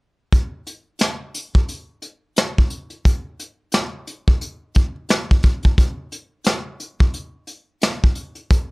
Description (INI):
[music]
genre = hip hop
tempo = 88 BPM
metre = 4/4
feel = swing 60% on 16ths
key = none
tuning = none
[part]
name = vintage brush drum kit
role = drums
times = 0.3-8.7 s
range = hi-hat, kick drum, rim click, snare drum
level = -16 LUFS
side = equal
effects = none
[sound]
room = little or no reverb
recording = dry, gritty hardware recording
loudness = -18 LUFS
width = side -28 dB against mid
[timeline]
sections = 0.3-8.7 A section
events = none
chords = none